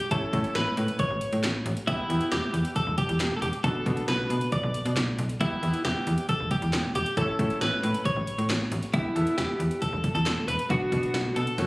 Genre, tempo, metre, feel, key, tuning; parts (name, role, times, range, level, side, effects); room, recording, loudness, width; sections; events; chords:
synth-pop; 136 BPM; 4/4; straight; A4 = 441 Hz
twelve-string electric guitar; melody; 0.0-11.7 s; E4 to D5; -29 LUFS; equal; tape echo
80s electronic pad drums; drums; 0.0-11.7 s; handclaps, hi-hat, kick drum, snare drum; -31 LUFS; equal
bright concert grand piano; accompaniment; 0.1-11.7 s; A3 to A4; -33 LUFS; equal
slap-like FM bass; bass; 0.1-11.7 s; E1 to B2; -28 LUFS; equal
light reverb; recorded on a phone in the room, club reverb; -24 LUFS; side -22 dB against mid
0.0-11.7 A section
0.1 A; 1.9 Em; 3.6 Bm; 5.4 Em; 7.2 A; 8.9 Em; 10.7 Bm